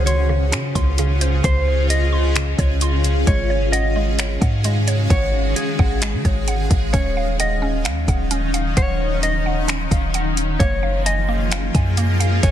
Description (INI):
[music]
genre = hip hop, atmospheric cloud-rap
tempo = 131 BPM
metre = 4/4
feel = half-time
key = unclear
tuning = A4 = 439 Hz
[part]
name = mellow electric guitar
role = melody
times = 0.0-12.5 s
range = Ab4 to Eb5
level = -26 LUFS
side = left 1 dB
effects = low-pass filter, ping-pong delay
[part]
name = granular cloud pad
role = sustained chords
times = 0.0-12.5 s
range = Db3 to Bb4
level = -25 LUFS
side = left 2 dB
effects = built-in reverb, sidechain pumping
[part]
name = mallet-like synth pluck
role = arpeggios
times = 0.0-12.5 s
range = Db3 to C6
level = -28 LUFS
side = right 4 dB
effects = chorus, low-pass filter, ping-pong delay
[part]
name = clean 808-style bass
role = bass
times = 0.0-12.5 s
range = Eb1 to Eb3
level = -20 LUFS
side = equal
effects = none
[part]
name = backwards swelling texture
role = texture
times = 0.0-12.5 s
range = F3 to C6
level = -30 LUFS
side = left 1 dB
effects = built-in reverb
[part]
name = smooth R&B drum kit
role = drums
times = 0.1-12.5 s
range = finger snaps, hi-hat, kick drum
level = -20 LUFS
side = equal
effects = overdrive, soft clipping on snare
[sound]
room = digital ambience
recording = dense, heavily limited modern master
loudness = -16 LUFS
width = side -11 dB against mid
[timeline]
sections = 0.0-12.5 A section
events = none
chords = 0.0 Dbmaj7; 3.3 Ab7sus4; 6.9 Ebm9; 10.6 Gbmaj9